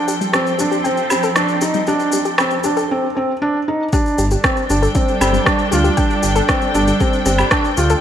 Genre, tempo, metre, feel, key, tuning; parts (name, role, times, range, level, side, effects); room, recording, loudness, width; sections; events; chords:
piano and strings electronica; 117 BPM; 4/4; straight; A4 = 440 Hz
dark studio string section; sustained chords; 0.0-8.0 s; F3 to G5; -22 LUFS; right 1 dB
felt-muted upright piano; riff; 0.0-7.9 s; C4 to F4; -18 LUFS; right 1 dB; digital delay
soft round pluck; arpeggios; 0.1-8.0 s; G3 to G5; -23 LUFS; left 4 dB; chorus, sidechain pumping, digital delay
electronic shaker, rim click and woodblock; drums; 0.1-8.0 s; -20 LUFS; equal; high-pass filter on perc, high-pass filter on snare, high-pass filter on room
electronic kick drum; drums; 3.9-7.6 s; -19 LUFS; equal; overdrive
dark detuned saw bass; bass; 4.2-8.0 s; G1 to D2; -18 LUFS; equal; sidechain pumping
moderate lush hall reverb, RT60 2.0 s; -14 LUFS; side -9 dB against mid
0.0-3.9 A section; 3.9-8.0 B section
build-up 0.0-3.9; filter sweep on synth arpeggio sound 0.0-3.9; break 2.9-3.9; drop 3.9-8.0
0.0 Fadd9; 3.9 Gsus2